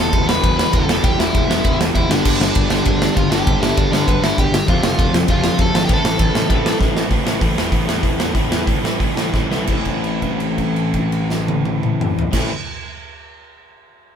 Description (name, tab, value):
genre	punk rock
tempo	168-198 BPM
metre	4/4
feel	straight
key	A minor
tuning	A4 = 440 Hz
part	dark smooth lead guitar	melody	0.0-6.8 s	B3 to B5	-22 LUFS	left 1 dB	overdrive
part	distorted electric guitar	riff	0.0-12.5 s	G2 to F4	-24 LUFS	right 7 dB	distortion
part	overdriven semi-hollow guitar	riff	0.0-12.5 s	E2 to A3	-22 LUFS	left 4 dB	none
part	fuzz picked electric bass	bass	0.0-12.5 s	E1 to E2	-24 LUFS	equal	overdrive
part	big rock drum kit	drums	0.1-12.4 s	crash cymbal, hi-hat, kick drum, ride cymbal, snare drum, toms	-18 LUFS	equal	none
room	light reverb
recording	band playing live in one room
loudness	-15 LUFS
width	side -8 dB against mid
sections	0.0-7.1 A section; 7.1-9.7 B section; 9.7-12.5 C section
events	drum fill 6.8-7.1, 9.3-9.7; slowing down 7.1-9.7; held note 9.7-12.3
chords	0.0 Em; 2.1 G; 4.7 F; 5.9 Am